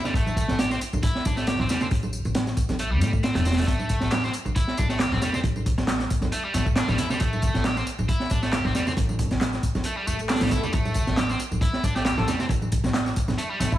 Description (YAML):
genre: breakbeat, breaks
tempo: 136 BPM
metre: 4/4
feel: swing 54% on 16ths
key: A minor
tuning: A4 = 440 Hz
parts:
  - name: biting overdriven guitar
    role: riff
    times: 0.0-13.7 s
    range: G3 to G4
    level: -29 LUFS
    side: equal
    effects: low-pass filter, digital delay
  - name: crunchy breakbeat drum kit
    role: drums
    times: 0.0-13.8 s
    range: hi-hat, kick drum, snare drum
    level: -24 LUFS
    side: equal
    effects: none
  - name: congas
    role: percussion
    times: 0.0-13.7 s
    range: none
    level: -34 LUFS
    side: right 4 dB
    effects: none
  - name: upright bass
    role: bass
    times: 0.1-13.8 s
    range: E1 to A2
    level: -27 LUFS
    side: equal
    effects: none
  - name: electronic tambourine and handclaps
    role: drums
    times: 0.1-13.8 s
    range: none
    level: -35 LUFS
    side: equal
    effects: overdrive
  - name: swell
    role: sound effects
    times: 10.0-10.7 s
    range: none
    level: -33 LUFS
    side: equal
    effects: none
  - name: trumpet with plunger mute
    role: melody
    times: 12.0-13.8 s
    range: E4 to A4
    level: -32 LUFS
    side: left 1 dB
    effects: old record sound, vintage 12-bit sampler grit, digital delay
room: small room ambience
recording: studio ambience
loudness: -22 LUFS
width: side -13 dB against mid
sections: 0.0-13.8 A section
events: swell 10.0-10.7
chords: 0.0 A7(no3)